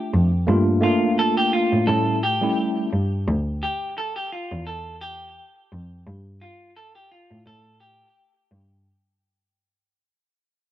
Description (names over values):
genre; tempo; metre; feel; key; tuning
hip hop; 86 BPM; 4/4; swing 55% on 16ths; unclear; A4 = 440 Hz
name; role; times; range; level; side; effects
semi-hollow electric guitar; melody; 0.0-8.3 s; F4 to A4; -25 LUFS; equal; vibrato effect, high-pass filter, low-pass filter, analog delay
tine electric piano; accompaniment; 0.0-2.9 s; G3 to E5; -21 LUFS; equal; overdrive, fast stereo tremolo, high-pass filter, low-pass filter
dark cello; bass; 0.1-8.7 s; D2 to A2; -22 LUFS; equal; tube saturation
room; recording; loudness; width
light reverb, studio reverb; dry, gritty hardware recording; -19 LUFS; side -13 dB against mid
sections
0.0-8.9 A section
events
fade-out 0.0-8.9; break 3.3-8.9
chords
0.5 Gm7; 1.9 A7; 3.3 Dsus2; 6.1 Gsus2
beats
| 0.48 1.18 1.88 2.58 | 3.27 3.97 4.67 5.37 | 6.06 6.76 7.46 8.16